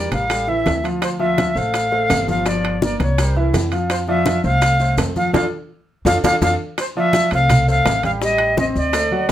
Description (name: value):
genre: latin, salsa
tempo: 167 BPM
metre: 4/4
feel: straight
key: F major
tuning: A4 = 445 Hz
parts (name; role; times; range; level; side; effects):
- jazz flute; melody; 0.0-9.3 s; C5 to F5; -19 LUFS; equal; none
- clear baby grand piano; accompaniment; 0.0-9.3 s; E3 to G5; -22 LUFS; equal; none
- upright bass; bass; 0.0-9.3 s; G1 to F2; -22 LUFS; equal; none
- congas; percussion; 0.1-9.3 s; none; -24 LUFS; left 1 dB; none
- maracas; percussion; 0.1-9.3 s; none; -33 LUFS; left 2 dB; none
- timbales; percussion; 0.1-9.3 s; none; -26 LUFS; right 5 dB; none
- bongos; percussion; 0.3-9.3 s; none; -26 LUFS; left 4 dB; none
room: moderate small room ambience, RT60 0.5 s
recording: none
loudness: -15 LUFS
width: side -11 dB against mid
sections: 0.0-6.8 A section; 6.8-9.3 A section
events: drum fill 5.3-6.8; band accent 5.3-6.8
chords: 0.3 A5; 1.0 Dm9; 2.5 Gm7; 3.2 C7b9; 3.9 F6; 8.2 Am7b5